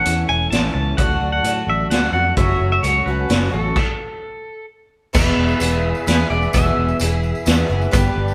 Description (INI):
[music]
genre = folk rock and heartland rock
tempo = 129 BPM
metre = 3/4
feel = straight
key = unclear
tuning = A4 = 440 Hz
[part]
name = pedal steel guitar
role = melody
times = 0.0-8.3 s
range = A4 to A5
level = -24 LUFS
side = equal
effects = none
[part]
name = picked twelve-string acoustic guitar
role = accompaniment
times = 0.0-8.3 s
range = E2 to G#4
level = -26 LUFS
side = equal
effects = none
[part]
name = tonewheel organ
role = sustained chords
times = 0.0-8.3 s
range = E3 to B5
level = -32 LUFS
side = equal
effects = slow rotary speaker, overdrive
[part]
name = fingered electric bass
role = bass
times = 0.1-8.3 s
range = E1 to A2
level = -23 LUFS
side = equal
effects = none
[part]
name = vintage drum kit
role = drums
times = 0.1-8.0 s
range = crash cymbal, hi-hat, kick drum, snare drum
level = -22 LUFS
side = equal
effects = none
[part]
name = tambourine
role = percussion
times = 5.1-8.3 s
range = none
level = -38 LUFS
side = equal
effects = none
[sound]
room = moderate stone room reverb, RT60 1.2 s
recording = band playing live in one room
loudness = -18 LUFS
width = mono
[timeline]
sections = 0.0-5.2 A section; 5.2-8.3 B section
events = stop 3.8-5.2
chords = 0.0 A; 1.0 D; 2.4 F#m; 3.8 N.C.; 5.2 E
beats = 0.05 0.52 | 0.98 1.44 1.91 | 2.37 2.83 3.29 | 3.76 4.22 4.69 | 5.15 5.61 6.08 | 6.54 7.00 7.47 | 7.93